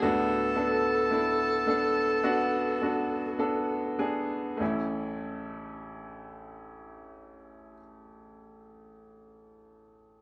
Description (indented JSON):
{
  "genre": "pop ballad",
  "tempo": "48-56 BPM",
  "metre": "4/4",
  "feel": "straight",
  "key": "A major",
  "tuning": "A4 = 439 Hz",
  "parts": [
    { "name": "warm tenor saxophone", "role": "melody", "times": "0.0-3.4 s", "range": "A4", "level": "-30 LUFS", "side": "equal", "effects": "delay" },
    { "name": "bright upright piano", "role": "accompaniment", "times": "0.0-10.2 s", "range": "A1 to A4", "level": "-33 LUFS", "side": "equal", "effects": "none" }
  ],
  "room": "moderate stone room reverb, RT60 1.1 s",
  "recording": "band playing live in one room",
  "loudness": "-28 LUFS",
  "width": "mono",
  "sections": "0.0-4.6 A section; 4.6-9.5 B section",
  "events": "slowing down 0.0-4.6",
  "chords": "0.0 D6; 4.6 A"
}